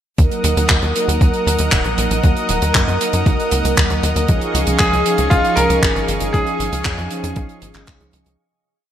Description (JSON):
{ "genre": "italo disco", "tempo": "117 BPM", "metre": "4/4", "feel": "straight", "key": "Eb minor", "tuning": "A4 = 440 Hz", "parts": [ { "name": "lush unison pad", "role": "sustained chords", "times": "0.2-8.4 s", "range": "Ab4 to Eb6", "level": "-22 LUFS", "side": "equal", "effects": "chorus" }, { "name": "mellow synth brass", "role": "stabs", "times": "0.2-8.4 s", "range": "F3 to Bb4", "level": "-22 LUFS", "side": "right 2 dB", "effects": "chorus" }, { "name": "tight sequencer bass", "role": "bass", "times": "0.2-8.4 s", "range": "Eb1 to Gb2", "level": "-20 LUFS", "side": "equal", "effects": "none" }, { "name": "electronic kick drum", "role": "drums", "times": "0.2-8.0 s", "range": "none", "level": "-17 LUFS", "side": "equal", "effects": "none" }, { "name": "tight funk drum kit", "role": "drums", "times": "0.2-8.4 s", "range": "handclaps, hi-hat", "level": "-21 LUFS", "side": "right 1 dB", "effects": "none" }, { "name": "bright grand piano", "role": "melody", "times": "4.8-7.8 s", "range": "F4 to Bb4", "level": "-18 LUFS", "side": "equal", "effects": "digital delay" } ], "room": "moderate plate reverb, RT60 1.7 s, small room ambience", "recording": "bright 1980s-style digital production", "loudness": "-14 LUFS", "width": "side -10 dB against mid", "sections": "0.2-8.4 verse", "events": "fade-out 5.7-8.4", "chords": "0.2 Ebm; 4.3 Dbadd9" }